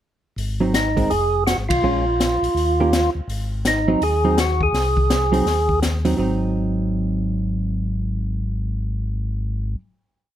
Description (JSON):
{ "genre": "soul jazz organ trio", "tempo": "165 BPM", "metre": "4/4", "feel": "swing 63% on 8ths", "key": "Ab mixolydian", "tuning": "A4 = 439 Hz", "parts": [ { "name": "mellow tonewheel organ", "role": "bass", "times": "0.4-9.8 s", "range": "F1 to Eb2", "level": "-23 LUFS", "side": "left 1 dB", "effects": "chorus vibrato, slow rotary speaker" }, { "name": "open jazz drum kit", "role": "drums", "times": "0.4-6.1 s", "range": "hi-hat, kick drum, ride cymbal, snare drum", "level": "-24 LUFS", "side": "left 2 dB", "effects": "none" }, { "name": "hollow-body jazz guitar", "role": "accompaniment", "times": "0.6-9.8 s", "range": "Eb3 to G4", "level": "-23 LUFS", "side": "right 2 dB", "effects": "none" }, { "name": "percussive tonewheel organ", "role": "melody", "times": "0.8-5.8 s", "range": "Eb4 to Ab4", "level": "-20 LUFS", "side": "right 1 dB", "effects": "slow rotary speaker, plate reverb" } ], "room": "light reverb", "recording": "none", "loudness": "-18 LUFS", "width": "side -11 dB against mid", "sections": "0.4-6.2 A section; 6.2-9.1 final chord", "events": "band accent 1.6", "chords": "0.4 Ab7; 1.1 Fm; 1.8 Bbm7; 2.6 Eb7; 3.3 Ab7", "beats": "| 0.37 0.74 1.10 1.46 | 1.83 2.19 2.55 2.92 | 3.28 3.64 4.01 4.37 | 4.73 5.10 5.46 5.82 | 6.19 6.55 6.91 7.27 | 7.64 8.00 8.36 8.72" }